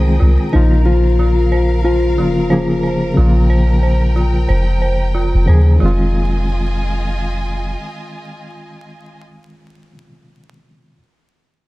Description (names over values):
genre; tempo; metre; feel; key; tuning
trip hop; 91 BPM; 4/4; swing 57% on 16ths; F minor; A4 = 440 Hz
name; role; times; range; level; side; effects
bright reed electric piano; accompaniment; 0.0-11.0 s; Db3 to Ab4; -20 LUFS; equal; medium tremolo, tape echo
rich studio violin section; sustained chords; 0.0-9.2 s; F4 to Eb6; -28 LUFS; left 1 dB; none
dark detuned synth bell; arpeggios; 0.0-11.0 s; F4 to C5; -25 LUFS; right 2 dB; chorus, tremolo, tape echo
soft 808-style bass; bass; 0.0-7.8 s; F1 to Eb2; -14 LUFS; equal; none
wind-like tuned noise texture; texture; 0.0-5.8 s; Bb4; -34 LUFS; right 2 dB; none
mellow electric guitar; melody; 0.5-5.1 s; Eb4 to F4; -19 LUFS; left 4 dB; tape echo
room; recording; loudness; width
digital ambience; dark, warm production, vinyl crackle; -12 LUFS; side -19 dB against mid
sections
0.0-5.8 A section; 5.8-8.4 B section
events
none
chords
0.0 Fm7; 0.5 Bbm; 5.8 Fm7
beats
| 0.53 1.19 1.85 2.51 | 3.17 3.83 4.49 5.15 | 5.81 6.47 7.13 7.79